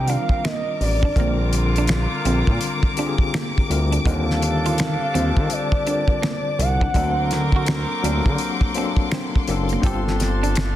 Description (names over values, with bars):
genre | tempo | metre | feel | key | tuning
R&B, neo-soul | 83 BPM | 4/4 | swing 62% on 16ths | Bb major | A4 = 439 Hz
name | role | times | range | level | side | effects
gliding portamento lead | melody | 0.0-7.7 s | D5 to Gb5 | -25 LUFS | right 1 dB | chorus, slapback echo
tine electric piano | accompaniment | 0.0-10.8 s | D3 to C5 | -26 LUFS | left 5 dB | fast tremolo
warm studio string section | sustained chords | 0.0-10.8 s | Bb3 to D6 | -30 LUFS | left 3 dB | none
clear horn section | stabs | 0.0-10.8 s | Bb2 to Bb4 | -31 LUFS | right 3 dB | none
smooth gliding synth bass | bass | 0.0-10.7 s | F#1 to Eb3 | -22 LUFS | equal | none
clean electric guitar | second line | 0.1-10.5 s | Bb3 to G4 | -30 LUFS | right 7 dB | slapback echo
cloth-damped thuddy drum kit | drums | 0.1-10.8 s | finger snaps, hi-hat, kick drum, snare drum | -22 LUFS | equal | none
room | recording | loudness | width
small room ambience | dense, heavily limited modern master | -18 LUFS | side -13 dB against mid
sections
0.0-10.8 A section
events
none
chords
0.0 Cm11; 1.2 Bb7; 4.1 Ebmaj9#11; 6.9 D7b13; 9.8 Gm11